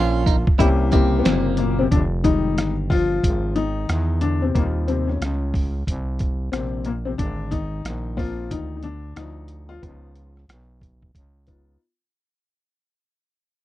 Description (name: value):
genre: hip hop, jazz-hop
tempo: 91 BPM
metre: 4/4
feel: swing 62% on 16ths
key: unclear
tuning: A4 = 439 Hz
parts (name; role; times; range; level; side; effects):
- breathy tenor saxophone; melody; 0.0-0.6 s; F4; -25 LUFS; right 5 dB; none
- clean electric guitar; second line; 0.0-1.9 s; Bb3 to E4; -26 LUFS; right 11 dB; none
- warm upright piano; accompaniment; 0.0-11.8 s; Bb2 to A4; -24 LUFS; left 5 dB; none
- growling FM bass; bass; 0.0-11.8 s; F1 to E2; -24 LUFS; right 1 dB; none
- trip hop sampler-style drum kit; drums; 0.3-11.7 s; hi-hat, kick drum, rim click, snare drum; -22 LUFS; right 1 dB; none
room: little or no reverb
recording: dry, close 1970s-style studio recording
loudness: -19 LUFS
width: side -14 dB against mid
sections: 0.0-1.9 A section; 1.9-12.5 B section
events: fade-out 1.9-12.5; upright piano solo 1.9-12.5; break 11.8-12.5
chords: 0.0 Gm7b5 (rootless); 0.6 C7b9; 1.9 Fm9; 4.6 Eb13; 7.2 Ab69; 9.8 Db9